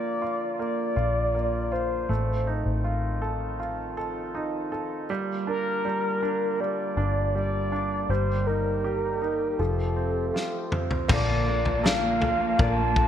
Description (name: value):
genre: pop ballad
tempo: 80 BPM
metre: 4/4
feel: straight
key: Bb major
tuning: A4 = 435 Hz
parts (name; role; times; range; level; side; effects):
- mellow horn-like synth lead; melody; 0.0-13.1 s; A4 to A5; -28 LUFS; left 1 dB; chorus
- clear concert grand piano; accompaniment; 0.0-13.1 s; F3 to D5; -31 LUFS; right 4 dB; none
- warm French horn section; sustained chords; 0.0-13.1 s; D3 to G4; -36 LUFS; left 2 dB; none
- vintage muted fingered electric bass; bass; 0.0-13.1 s; F1 to Bb1; -28 LUFS; left 1 dB; none
- loose indie drum kit; drums; 10.4-13.1 s; crash cymbal, kick drum, snare drum, toms; -26 LUFS; left 1 dB; gated reverb
- dark symphonic cello section; second line; 11.1-13.1 s; Bb3; -31 LUFS; right 4 dB; digital delay
- nylon-string guitar; arpeggios; 11.1-13.1 s; Bb2 to A4; -33 LUFS; left 6 dB; lush chorus
room: moderate plate reverb, RT60 2.1 s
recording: bright 1980s-style digital production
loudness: -24 LUFS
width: side -9 dB against mid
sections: 0.0-11.1 A section; 11.1-13.1 B section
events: drum fill 10.3-11.1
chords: 0.0 Bb; 2.1 F7/A; 5.1 Gm7; 8.1 Eb/G; 9.6 Fadd9; 11.1 Bbmaj7